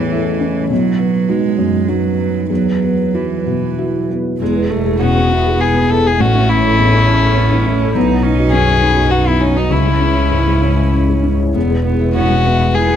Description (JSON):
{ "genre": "neoclassical piano and strings", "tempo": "93-105 BPM", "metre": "3/4", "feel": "rubato", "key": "E major", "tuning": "A4 = 441 Hz", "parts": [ { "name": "warm cello", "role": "second line", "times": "0.0-13.0 s", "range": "E3 to E4", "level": "-20 LUFS", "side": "right 8 dB", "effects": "none" }, { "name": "felt-muted upright piano", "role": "accompaniment", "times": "0.0-13.0 s", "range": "A1 to A4", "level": "-17 LUFS", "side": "left 3 dB", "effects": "none" }, { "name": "dark analog pad", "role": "sustained chords", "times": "0.0-13.0 s", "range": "F#3 to C#5", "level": "-25 LUFS", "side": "right 3 dB", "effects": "chorus, phaser" }, { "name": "rich viola", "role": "accompaniment", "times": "4.4-13.0 s", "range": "G#3 to D#4", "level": "-23 LUFS", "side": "right 4 dB", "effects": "none" }, { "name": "vibraphone with medium mallets", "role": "arpeggios", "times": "4.4-13.0 s", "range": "C#4 to B5", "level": "-25 LUFS", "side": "right 3 dB", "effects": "tape echo" }, { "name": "rich double bass", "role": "bass", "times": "4.4-13.0 s", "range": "E1 to C#2", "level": "-16 LUFS", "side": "equal", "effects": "none" }, { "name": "warm violin", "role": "melody", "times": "5.0-13.0 s", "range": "C#4 to A4", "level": "-16 LUFS", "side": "left 4 dB", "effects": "none" } ], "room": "little or no reverb", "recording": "close, detailed microphones, lossy compression artefacts", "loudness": "-12 LUFS", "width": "side -9 dB against mid", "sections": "0.0-4.4 A section; 4.4-13.0 A section", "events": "none", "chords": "0.0 A; 0.7 B; 2.5 Esus2; 4.4 E; 6.2 A; 8.0 B; 9.7 C#m; 11.6 E", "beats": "0.12 | 0.70 1.28 1.88 | 2.50 3.14 3.78 | 4.41 5.00 5.60 | 6.20 6.79 7.37 | 7.95 8.53 9.11 | 9.71 10.32 10.93 | 11.55 12.15 12.75" }